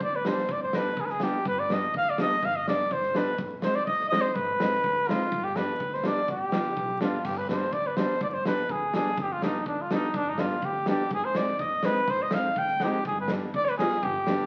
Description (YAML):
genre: klezmer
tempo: 124 BPM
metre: 2/4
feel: straight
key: G phrygian dominant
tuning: A4 = 440 Hz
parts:
  - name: clear cornet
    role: melody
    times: 0.0-14.5 s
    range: D4 to G5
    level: -29 LUFS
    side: equal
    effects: none
  - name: upright bass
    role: bass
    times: 0.0-14.5 s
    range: G1 to Eb2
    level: -43 LUFS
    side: equal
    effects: none
  - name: big rock drum kit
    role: drums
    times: 0.0-14.4 s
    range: crash cymbal, kick drum, snare drum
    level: -35 LUFS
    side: equal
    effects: none
  - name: clear upright piano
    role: accompaniment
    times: 0.3-14.4 s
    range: G3 to F4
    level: -35 LUFS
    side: equal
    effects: none
room: wet large studio reverb, RT60 0.9 s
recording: very old 78 rpm record, vinyl crackle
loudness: -27 LUFS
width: mono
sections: 0.0-7.2 A section; 7.2-14.5 A section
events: none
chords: 0.0 G; 3.4 Ab; 5.3 G; 11.1 Ab; 13.1 G